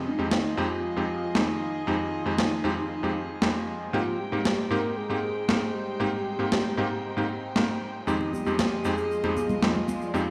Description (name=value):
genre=nu-disco, nu disco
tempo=116 BPM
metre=4/4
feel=straight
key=F minor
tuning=A4 = 442 Hz
part: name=soft octave-layered synth lead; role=melody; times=0.0-10.3 s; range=Eb4 to Bb4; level=-34 LUFS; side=equal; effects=chorus, analog delay
part: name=warm chamber string section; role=sustained chords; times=0.0-10.3 s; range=F3 to G5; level=-37 LUFS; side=equal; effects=vintage 12-bit sampler grit
part: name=bright electric grand piano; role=accompaniment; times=0.2-10.2 s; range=F2 to G4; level=-31 LUFS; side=equal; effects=slapback echo
part: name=electronic snare drum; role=drums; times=0.3-9.7 s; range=none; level=-30 LUFS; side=equal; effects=overdrive, studio ambience
part: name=tube shaker and congas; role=percussion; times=8.1-10.3 s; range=none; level=-35 LUFS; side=equal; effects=none
room=moderate lush hall reverb, RT60 2.6 s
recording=played on a big sound system in a bare room, stone room reverb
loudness=-27 LUFS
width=mono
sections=0.0-10.3 A section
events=none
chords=0.0 Fm7; 3.9 Abmaj7; 8.1 Fm7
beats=0.32 0.84 1.35 | 1.87 2.39 2.90 3.42 | 3.94 4.46 4.97 5.49 | 6.01 6.53 7.04 7.56 | 8.08 8.60 9.11 9.63 | 10.15